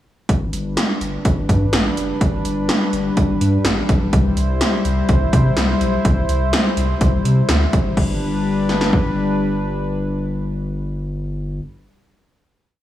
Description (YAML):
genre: synth-pop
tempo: 125 BPM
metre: 4/4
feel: straight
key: G major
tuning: A4 = 439 Hz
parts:
  - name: warm analog pad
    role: sustained chords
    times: 0.3-11.6 s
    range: G3 to C5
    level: -21 LUFS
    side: left 2 dB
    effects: chorus
  - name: round analog bass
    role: bass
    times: 0.3-11.6 s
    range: F#1 to C3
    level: -21 LUFS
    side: equal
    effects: none
  - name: 80s electronic pad drums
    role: drums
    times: 0.3-9.0 s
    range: crash cymbal, hi-hat, kick drum, snare drum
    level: -18 LUFS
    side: equal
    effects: none
room: light reverb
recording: small room ambience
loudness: -16 LUFS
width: side -13 dB against mid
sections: 0.3-8.0 verse; 8.0-11.8 final chord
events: none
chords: 0.3 G; 4.1 C; 8.0 G